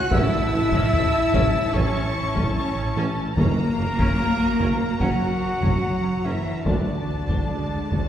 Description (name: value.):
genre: cinematic, epic orchestral film score.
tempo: 73 BPM.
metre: 4/4.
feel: straight.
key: unclear.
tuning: A4 = 438 Hz.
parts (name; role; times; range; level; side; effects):
warm symphonic violin section; melody; 0.0-8.1 s; G#5 to A#5; -34 LUFS; left 4 dB; none.
hollow concert flute; second line; 0.0-8.1 s; D5 to E6; -32 LUFS; left 1 dB; none.
rich symphonic violin section; second line; 0.0-8.1 s; D5 to E6; -35 LUFS; left 1 dB; none.
clear symphonic viola section; accompaniment; 0.0-8.1 s; G#3 to F#4; -32 LUFS; right 1 dB; none.
mellow French horn section; sustained chords; 0.0-8.1 s; D3 to F#4; -30 LUFS; left 2 dB; none.
dark trumpet section; stabs; 0.0-8.1 s; D4 to F#5; -29 LUFS; left 1 dB; none.
rich symphonic cello section; bass; 0.0-8.1 s; D3 to F#4; -29 LUFS; right 2 dB; none.
rich symphonic double bass section; bass; 0.1-8.0 s; F#1 to D2; -29 LUFS; right 2 dB; none.
warm tuba; bass; 0.1-8.0 s; F#1 to D2; -31 LUFS; right 1 dB; none.
taiko ensemble; drums; 0.1-8.1 s; none; -24 LUFS; equal; none.
room: wet concert hall reverb, RT60 2.1 s.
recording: heard from further back in the room.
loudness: -20 LUFS.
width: side -10 dB against mid.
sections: 0.0-8.1 A section.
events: none.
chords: 0.1 A; 3.4 F#; 6.7 D.